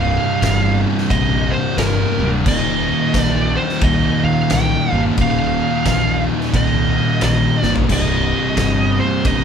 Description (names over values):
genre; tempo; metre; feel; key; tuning
stoner and doom metal; 88 BPM; 4/4; swing 60% on 8ths; unclear; A4 = 440 Hz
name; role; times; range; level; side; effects
fuzz lead guitar; melody; 0.0-9.4 s; Bb4 to G5; -21 LUFS; right 2 dB; distortion
fuzz guitar; riff; 0.0-9.4 s; C2 to Eb3; -22 LUFS; equal; distortion
thick fuzz guitar; riff; 0.0-9.4 s; C2 to Eb3; -22 LUFS; left 6 dB; distortion
thick fuzz guitar; riff; 0.0-9.4 s; C2 to Eb3; -23 LUFS; right 7 dB; distortion
fuzz fingered electric bass; bass; 0.0-9.4 s; C1 to Eb2; -22 LUFS; equal; overdrive
oversized low-tuned drum kit; drums; 0.4-9.4 s; crash cymbal, kick drum, ride cymbal, snare drum, toms; -21 LUFS; left 1 dB; none
room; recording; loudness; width
moderate large studio reverb, RT60 1.1 s; band playing live in one room; -14 LUFS; side -7 dB against mid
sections
0.0-9.4 A section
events
drum fill 7.6-7.9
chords
0.0 C5; 2.5 Eb5; 7.9 Cm